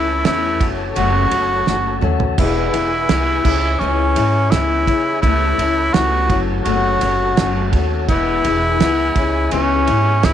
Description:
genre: folk rock and heartland rock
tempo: 84 BPM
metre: 4/4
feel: straight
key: unclear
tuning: A4 = 439 Hz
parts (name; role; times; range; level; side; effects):
- breathy tenor saxophone; melody; 0.0-10.3 s; C#4 to F#4; -18 LUFS; right 1 dB; none
- picked old ladder-braced acoustic guitar; accompaniment; 0.0-10.3 s; E2 to F#4; -21 LUFS; left 13 dB; none
- tonewheel organ; sustained chords; 0.0-10.3 s; E4 to A5; -28 LUFS; equal; slow rotary speaker
- upright bass; bass; 0.0-10.3 s; E1 to C#3; -20 LUFS; right 1 dB; none
- cloth-damped thuddy drum kit; drums; 0.2-10.3 s; crash cymbal, kick drum, ride cymbal, snare drum, toms; -21 LUFS; right 4 dB; none
room: little or no reverb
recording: 1960s-style stereo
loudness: -14 LUFS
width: side -10 dB against mid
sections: 0.0-10.3 A section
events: drum fill 1.7-2.4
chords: 0.0 A/C#; 0.6 F#m; 2.4 E; 3.5 C#m; 5.2 A/C#; 6.3 F#m; 8.1 E; 9.2 C#m

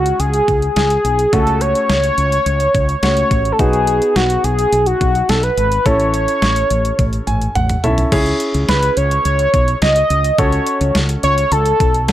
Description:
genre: synth-pop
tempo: 106 BPM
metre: 4/4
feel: straight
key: C# minor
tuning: A4 = 440 Hz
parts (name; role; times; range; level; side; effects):
- octave-doubled lead; melody; 0.0-12.1 s; F#4 to D#5; -15 LUFS; equal; chorus, tape echo
- clear baby grand piano; accompaniment; 0.0-12.1 s; G#3 to G#5; -22 LUFS; equal; none
- woody fretless electric bass; bass; 0.0-12.1 s; G#1 to C#2; -18 LUFS; equal; none
- detuned 8-bit digital drum machine; drums; 0.1-12.1 s; crash cymbal, hi-hat, kick drum, snare drum, toms; -19 LUFS; equal; overdrive
room: little or no reverb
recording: dry, gritty hardware recording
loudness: -13 LUFS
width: side -12 dB against mid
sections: 0.0-8.1 A section; 8.1-12.1 B section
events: drum fill 7.0-8.1; grand piano fill 7.0-8.1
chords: 0.0 C#m; 1.3 F#m/C#; 3.6 B; 5.9 A; 8.1 C#madd9; 10.4 F#m/C#

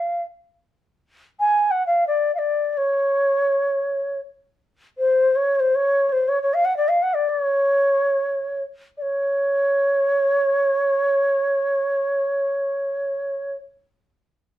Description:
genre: indian classical, Hindustani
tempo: free time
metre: none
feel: none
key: unclear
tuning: A4 = 439 Hz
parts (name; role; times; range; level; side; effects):
- mellow bansuri; solo; 0.0-13.5 s; B#4 to G#5; -18 LUFS; equal; none
room: moderate studio reverb, RT60 0.6 s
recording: band playing live in one room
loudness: -18 LUFS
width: side -13 dB against mid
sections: 0.0-9.0 A section; 9.0-12.9 B section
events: none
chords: none

